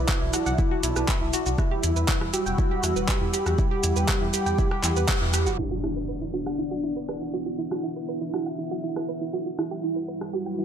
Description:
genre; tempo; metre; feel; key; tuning
melodic techno; 120 BPM; 4/4; straight; unclear; A4 = 440 Hz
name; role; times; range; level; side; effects
fat analog lead; melody; 0.0-10.6 s; D4 to G4; -30 LUFS; equal; ensemble chorus, sidechain pumping, ping-pong delay
dark analog pad; sustained chords; 0.0-10.6 s; G3 to E6; -34 LUFS; left 1 dB; chorus, sidechain pumping
soft round pluck; arpeggios; 0.0-10.6 s; E4 to G5; -31 LUFS; right 3 dB; chorus, vintage 12-bit sampler grit, sidechain pumping, ping-pong delay
dark detuned saw bass; bass; 0.0-5.5 s; E1 to E2; -27 LUFS; equal; sidechain pumping
deep house drum kit; drums; 0.1-10.3 s; crash cymbal, handclaps, hi-hat, rim click, shaker; -29 LUFS; right 1 dB; low-pass filter on snare, sidechain pumping on hats, low-pass filter on hats, sidechain pumping on perc, low-pass filter on perc, sidechain pumping on cymbals, low-pass filter on cymbals, low-pass filter on room
electronic kick drum; drums; 0.1-5.2 s; none; -25 LUFS; equal; none
impact; sound effects; 5.6-7.6 s; none; -35 LUFS; equal; none
room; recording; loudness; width
light reverb; low-pass filter; -23 LUFS; side -8 dB against mid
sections
0.0-5.6 A section; 5.6-10.6 B section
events
band accent 5.1; impact 5.6-7.6; filter sweep on drum 5.6-10.6; filter sweep on analog synth lead 5.6-10.6; filter sweep 5.6-10.6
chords
0.0 Bm; 1.6 Emadd9; 5.6 Bm; 9.6 Emadd9

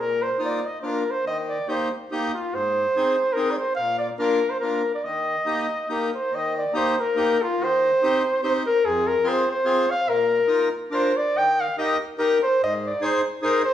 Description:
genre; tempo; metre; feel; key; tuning
alpine folk; 143 BPM; 3/4; swing 53% on 8ths, rubato; Eb major; A4 = 441 Hz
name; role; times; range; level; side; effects
clear flugelhorn; melody; 0.0-13.7 s; F4 to G5; -22 LUFS; equal; none
accordion; accompaniment; 0.0-13.6 s; F2 to C5; -26 LUFS; left 1 dB; none
room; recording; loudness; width
wet recital hall reverb, RT60 1.4 s; small room ambience; -20 LUFS; side -10 dB against mid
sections
0.0-6.3 A section; 6.3-13.7 A section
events
none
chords
0.0 Bbsus4; 0.8 Bb; 1.3 Eb; 2.5 Ab; 3.8 Bb; 5.0 Eb; 7.6 Cm/Eb; 8.8 Fm; 10.1 Bbsus4; 10.9 Bb; 11.3 Eb; 12.6 Ab

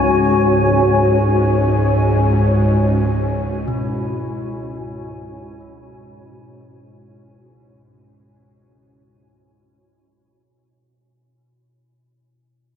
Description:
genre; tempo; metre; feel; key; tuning
dark ambient drone; free time; none; none; unclear; A4 = 440 Hz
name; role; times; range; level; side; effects
granular cloud pad; sustained chords; 0.0-8.3 s; C#4 to G#5; -18 LUFS; left 2 dB; built-in reverb
bowed-like drone; drone; 0.0-8.5 s; C#2 to G#2; -18 LUFS; equal; built-in reverb
bronze singing bowl; arpeggios; 3.7-11.4 s; B2; -31 LUFS; left 1 dB; none
room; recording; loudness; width
wet huge ambient reverb, RT60 8.8 s; none; -14 LUFS; side -8 dB against mid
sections
0.0-8.3 A section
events
fade-out 0.0-8.3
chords
0.0 C#5

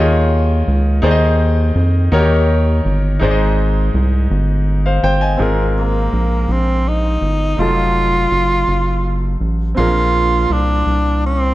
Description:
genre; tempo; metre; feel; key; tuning
slow gospel; 55 BPM (dotted quarters); 6/8; straight; Ab major; A4 = 442 Hz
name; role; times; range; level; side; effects
bright concert grand piano; accompaniment; 0.0-11.5 s; Ab2 to Ab5; -19 LUFS; left 1 dB; none
rubbery square bass; bass; 0.0-11.5 s; F1 to F2; -15 LUFS; equal; none
warm tenor saxophone; melody; 5.8-11.5 s; Bb3 to F4; -17 LUFS; right 1 dB; none
room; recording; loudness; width
light reverb; none; -13 LUFS; side -16 dB against mid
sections
0.0-5.4 A section; 5.4-11.5 B section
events
none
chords
0.0 Eb9sus4; 1.0 Ab/Eb; 2.1 Eb7; 3.2 Ab; 5.4 Ab69; 7.6 F7b9; 9.8 Bb9

